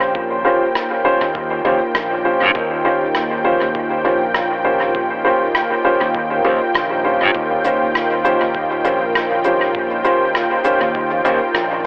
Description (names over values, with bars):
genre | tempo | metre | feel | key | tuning
ambient dub | 100 BPM | 4/4 | swing 54% on 16ths | Eb mixolydian | A4 = 440 Hz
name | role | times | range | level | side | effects
warm analog pad | sustained chords | 0.0-11.9 s | Eb3 to G5 | -19 LUFS | equal | chorus
dark upright piano | stabs | 0.0-11.4 s | Db4 to C5 | -17 LUFS | equal | dub echo
modern bright fingered electric bass | bass | 0.0-11.9 s | Bb1 to G2 | -24 LUFS | equal | none
electronic kick drum | drums | 0.1-11.1 s | none | -27 LUFS | equal | overdrive
rim click and shaker | drums | 0.8-11.7 s | none | -24 LUFS | equal | dub echo
room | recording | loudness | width
moderate echo chamber reverb, RT60 2.2 s | echo-heavy mix, telephone sound | -14 LUFS | side -37 dB against mid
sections
0.0-11.9 A section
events
none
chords
0.0 Eb13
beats
| 0.15 0.75 1.35 1.95 | 2.55 3.15 3.75 4.35 | 4.95 5.55 6.15 6.75 | 7.35 7.95 8.55 9.15 | 9.75 10.35 10.95 11.55